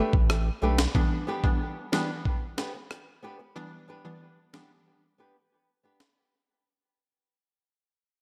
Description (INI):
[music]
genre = dancehall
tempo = 92 BPM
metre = 4/4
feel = straight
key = E minor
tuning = A4 = 440 Hz
[part]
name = flamenco guitar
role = arpeggios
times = 0.0-6.0 s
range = A3 to B4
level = -35 LUFS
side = equal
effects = diffuse ambient delay
[part]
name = saturated sub bass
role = bass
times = 0.1-0.9 s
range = A1 to B1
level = -28 LUFS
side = equal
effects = none
[part]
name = breakbeat sampler-style drum kit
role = drums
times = 0.1-6.2 s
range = kick drum, rim click, snare drum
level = -29 LUFS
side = equal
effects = none
[part]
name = wavetable chord stab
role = accompaniment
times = 0.9-4.7 s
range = E3 to D4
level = -36 LUFS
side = equal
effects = subtle chorus, sidechain pumping
[sound]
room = moderate lush hall reverb, RT60 2.0 s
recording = dreamy mix soaked in reverb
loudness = -27 LUFS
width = mono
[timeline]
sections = 0.0-6.2 A section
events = fade-out 0.0-6.2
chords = 0.0 Gadd9; 0.9 Em7